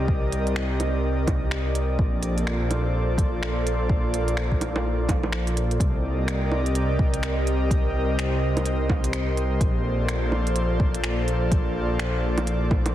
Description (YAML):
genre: future garage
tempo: 126 BPM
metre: 4/4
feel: swing 61% on 16ths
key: C dorian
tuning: A4 = 440 Hz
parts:
  - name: airy breathy pad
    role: sustained chords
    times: 0.0-12.9 s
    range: Bb3 to Eb5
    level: -27 LUFS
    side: equal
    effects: chorus, sidechain pumping
  - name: dark detuned saw bass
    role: bass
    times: 0.0-12.9 s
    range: Bb1 to C2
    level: -25 LUFS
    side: equal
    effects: none
  - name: electronic kick drum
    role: drums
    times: 0.1-12.8 s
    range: none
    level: -24 LUFS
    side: equal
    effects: vintage 12-bit sampler grit
  - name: organic electronic drum kit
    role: drums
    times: 0.3-12.9 s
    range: bongos, finger snaps, hi-hat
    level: -31 LUFS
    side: right 2 dB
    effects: vintage 12-bit sampler grit, soft clipping on snare
room: light reverb, digital ambience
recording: dense, heavily limited modern master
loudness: -22 LUFS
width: side -12 dB against mid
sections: 0.0-5.8 A section; 5.8-12.9 B section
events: none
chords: 0.0 Cm7; 2.0 Bbmaj7; 5.8 Cm7; 9.6 Bbmaj7